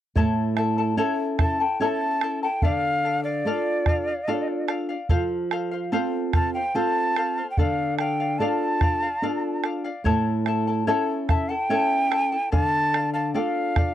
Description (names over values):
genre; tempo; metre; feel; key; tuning
andean folk, Andean ensemble; 73 BPM; 3/4; straight; D minor; A4 = 442 Hz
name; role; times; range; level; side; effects
charango; accompaniment; 0.2-13.9 s; E4 to A5; -29 LUFS; left 5 dB; none
flamenco guitar; accompaniment; 0.2-13.9 s; A2 to A4; -26 LUFS; right 1 dB; none
bombo; percussion; 0.2-13.9 s; none; -23 LUFS; right 1 dB; none
mellow quena; melody; 1.4-13.9 s; D5 to Bb5; -25 LUFS; equal; none
room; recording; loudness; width
light reverb; dry, close 1970s-style studio recording; -21 LUFS; side -11 dB against mid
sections
0.2-13.9 A section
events
none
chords
0.2 A; 2.6 Dm; 5.1 F; 7.6 Dm; 10.0 A; 12.5 Dm